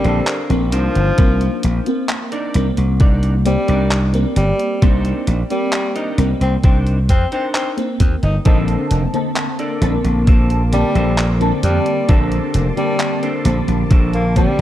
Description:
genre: vaporwave.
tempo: 66 BPM.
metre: 4/4.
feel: straight.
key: C dorian.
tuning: A4 = 440 Hz.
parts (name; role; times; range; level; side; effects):
clear tenor saxophone; melody; 0.0-14.6 s; F3 to Eb4; -22 LUFS; left 1 dB; tape echo.
FM electric piano with soft pad layer; accompaniment; 0.0-14.6 s; D3 to A5; -22 LUFS; left 1 dB; ensemble chorus, analog delay.
clean electric guitar; riff; 0.0-14.6 s; D4 to Eb5; -26 LUFS; right 1 dB; analog chorus, analog delay.
slap bass; bass; 0.0-14.6 s; F1 to F2; -16 LUFS; equal; none.
detuned 8-bit digital drum machine; drums; 0.0-14.6 s; handclaps, hi-hat; -25 LUFS; equal; none.
electronic kick drum; drums; 1.2-14.5 s; none; -13 LUFS; equal; none.
soft string machine; sustained chords; 9.1-14.6 s; Bb3 to D6; -29 LUFS; left 2 dB; ensemble chorus.
room: light reverb, digital ambience.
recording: dark, warm production, cassette tape.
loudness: -14 LUFS.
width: side -13 dB against mid.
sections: 0.0-14.6 A section.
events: clean electric guitar fill 13.9-14.6.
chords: 0.0 Bbmaj9; 0.7 Cm9; 8.5 Bbmaj9.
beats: 0.28 | 1.18 2.09 3.00 3.91 | 4.82 5.73 6.64 7.55 | 8.46 9.37 10.28 11.18 | 12.09 13.00 13.91.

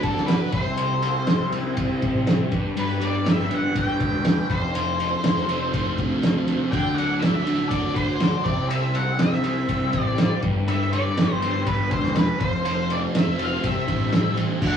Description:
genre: psychedelic rock.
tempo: 121 BPM.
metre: 4/4.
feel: straight.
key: unclear.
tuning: A4 = 439 Hz.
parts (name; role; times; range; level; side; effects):
octave-fuzz lead guitar; melody; 0.0-14.8 s; A4 to G5; -27 LUFS; left 1 dB; distortion.
tonewheel organ; sustained chords; 0.0-14.8 s; G3 to D5; -33 LUFS; right 2 dB; slow rotary speaker.
fuzz guitar; riff; 0.0-14.8 s; F2 to F4; -25 LUFS; equal; distortion, phaser.
fuzz picked electric bass; bass; 0.0-14.8 s; E1 to D2; -29 LUFS; left 1 dB; overdrive.
cloth-damped thuddy drum kit; drums; 0.0-14.7 s; crash cymbal, kick drum, ride cymbal, snare drum; -24 LUFS; equal; none.
room: wet booth ambience, RT60 0.2 s.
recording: rough rehearsal-room recording, warm saturation, small room ambience.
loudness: -20 LUFS.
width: side -8 dB against mid.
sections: 0.0-14.6 A section.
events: none.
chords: 0.0 D; 0.5 C; 2.5 G; 4.5 F; 6.7 D; 8.4 C; 10.4 G; 12.4 F; 13.6 C.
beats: 0.28 | 0.78 1.27 1.77 2.27 | 2.76 3.25 3.75 4.25 | 4.74 5.24 5.73 6.22 | 6.72 7.21 7.71 8.20 | 8.70 9.19 9.69 10.18 | 10.67 11.17 11.66 12.15 | 12.65 13.14 13.63 14.12 | 14.62.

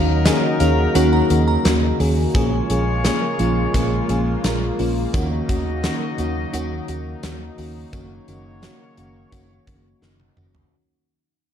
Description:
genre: 1980s-style pop.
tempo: 86 BPM.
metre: 4/4.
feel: straight.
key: Eb minor.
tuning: A4 = 440 Hz.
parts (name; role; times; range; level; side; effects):
glassy synth bell; second line; 0.0-2.8 s; Eb5 to Bb5; -29 LUFS; right 3 dB; chorus, ping-pong delay.
FM electric piano with soft pad layer; accompaniment; 0.0-10.7 s; Eb3 to Bb4; -21 LUFS; equal; chorus, tremolo.
warm analog pad; sustained chords; 0.0-10.7 s; Db3 to F4; -28 LUFS; left 1 dB; chorus.
warm horn section; stabs; 0.0-10.3 s; Gb3 to Eb5; -29 LUFS; left 3 dB; ping-pong delay.
vintage muted fingered electric bass; bass; 0.0-10.6 s; Gb1 to Eb2; -23 LUFS; equal; none.
cowbell; percussion; 0.2-10.2 s; none; -38 LUFS; right 6 dB; none.
gated 80s drum kit; drums; 0.3-10.7 s; hi-hat, kick drum, snare drum, tambourine, toms; -23 LUFS; equal; none.
room: moderate concert hall reverb, RT60 1.8 s.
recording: dark, warm production.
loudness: -17 LUFS.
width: side -8 dB against mid.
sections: 0.0-10.7 A section.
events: fade-out 0.0-10.7; drum fill 10.0-10.7.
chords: 0.0 Ebm7; 2.3 Bbm7; 5.1 Ebm7; 7.9 Gb6.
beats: 0.26 0.95 1.65 | 2.35 3.05 3.74 4.44 | 5.14 5.84 6.53 7.23 | 7.93 8.63 9.32 10.02.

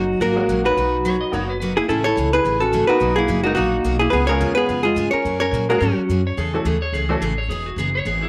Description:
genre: country, western swing.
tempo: 214 BPM.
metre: 4/4.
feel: swing 59% on 8ths.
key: B major.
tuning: A4 = 440 Hz.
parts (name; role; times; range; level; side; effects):
hollow-body jazz guitar; melody; 0.0-6.2 s; C#4 to C#5; -21 LUFS; equal; slapback echo.
breathy clarinet; second line; 0.0-6.2 s; F#3 to E4; -28 LUFS; equal; none.
picked steel-string acoustic guitar; accompaniment; 0.0-8.2 s; B2 to A4; -29 LUFS; equal; none.
upright bass; bass; 0.0-8.3 s; E1 to A#2; -27 LUFS; equal; none.
honky-tonk upright piano; accompaniment; 0.4-7.2 s; E3 to A#4; -28 LUFS; equal; none.
clean lap steel guitar; second line; 1.1-1.8, 6.3-8.3 s; E4 to D#5; -28 LUFS; equal; none.
room: moderate spring reverb, RT60 1.1 s, small room ambience.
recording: none.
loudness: -19 LUFS.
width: mono.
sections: 0.0-1.9 A section; 1.9-8.3 B section.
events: none.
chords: 0.0 F#add9; 0.8 Bmaj7; 1.9 Amaj7; 3.0 Bmaj7; 4.1 C#7; 5.2 F#add9; 6.4 A; 7.5 Emaj7.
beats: 0.21 0.49 | 0.77 1.05 1.33 1.61 | 1.89 2.17 2.45 2.73 | 3.01 3.29 3.57 3.85 | 4.13 4.41 4.69 4.97 | 5.25 5.53 5.81 6.09 | 6.37 6.65 6.93 7.21 | 7.49 7.77 8.05.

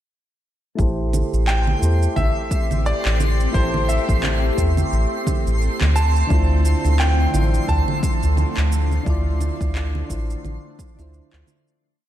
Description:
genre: sunset chillout.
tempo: 87 BPM.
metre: 4/4.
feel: swing 57% on 16ths.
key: A minor.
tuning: A4 = 441 Hz.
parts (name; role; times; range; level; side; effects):
soft electric-piano-like synth keys; accompaniment; 0.8-11.8 s; D3 to D5; -29 LUFS; moving between left 3 dB and right 3 dB; chorus, auto-pan, low-pass filter, diffuse ambient delay.
shimmering ambient pad; sustained chords; 1.4-11.8 s; D3 to G4; -29 LUFS; left 1 dB; chorus, built-in reverb, phaser.
round analog bass; bass; 0.8-11.4 s; A1 to E2; -19 LUFS; equal; none.
electronic kick drum; drums; 0.8-10.9 s; none; -24 LUFS; equal; overdrive.
electronic shaker, congas and handclaps; drums; 0.8-11.8 s; none; -28 LUFS; right 3 dB; overdrive.
twinkling granular texture; texture; 1.6-11.8 s; C6; -33 LUFS; equal; built-in reverb, wide subtle chorus.
bright grand piano; melody; 1.5-11.1 s; C5 to A5; -27 LUFS; right 1 dB; diffuse ambient delay.
room: light reverb, digital ambience.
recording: none.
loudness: -17 LUFS.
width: side -12 dB against mid.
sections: 0.8-11.8 groove.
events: filter sweep on synth keys 0.8-11.8; fade-out 8.1-11.8.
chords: 0.8 Am7; 6.0 Dm7.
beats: | 0.79 1.48 2.17 2.86 | 3.55 4.24 4.93 5.62 | 6.31 7.00 7.68 8.37 | 9.06 9.75 10.44 11.13.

